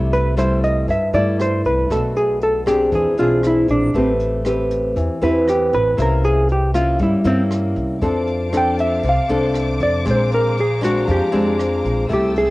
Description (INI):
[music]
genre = bossa nova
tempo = 118 BPM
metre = 4/4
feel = straight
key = C major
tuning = A4 = 439 Hz
[part]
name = nylon-string guitar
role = accompaniment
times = 0.0-12.5 s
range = G2 to B4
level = -19 LUFS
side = left 1 dB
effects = cassette tape
[part]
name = upright bass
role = bass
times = 0.0-12.5 s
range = A1 to G2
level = -22 LUFS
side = equal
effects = none
[part]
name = hollow-body jazz guitar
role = melody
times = 0.1-12.5 s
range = C4 to G5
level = -19 LUFS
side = equal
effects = cassette tape
[part]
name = jazz brush drum kit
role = drums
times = 0.1-12.5 s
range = hi-hat, kick drum, rim click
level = -32 LUFS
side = equal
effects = cassette tape
[part]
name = warm studio violin section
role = sustained chords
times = 8.0-12.5 s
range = C5 to E6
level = -30 LUFS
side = left 2 dB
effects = cassette tape
[sound]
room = light reverb, studio reverb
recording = home recording on cassette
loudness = -15 LUFS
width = side -19 dB against mid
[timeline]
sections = 0.0-12.5 A section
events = hollow-body jazz guitar solo 0.0-12.5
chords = 0.0 C6; 1.9 Bm7; 2.9 E7b13; 3.9 Am9; 6.0 C7b9; 8.0 F6; 10.1 Bb9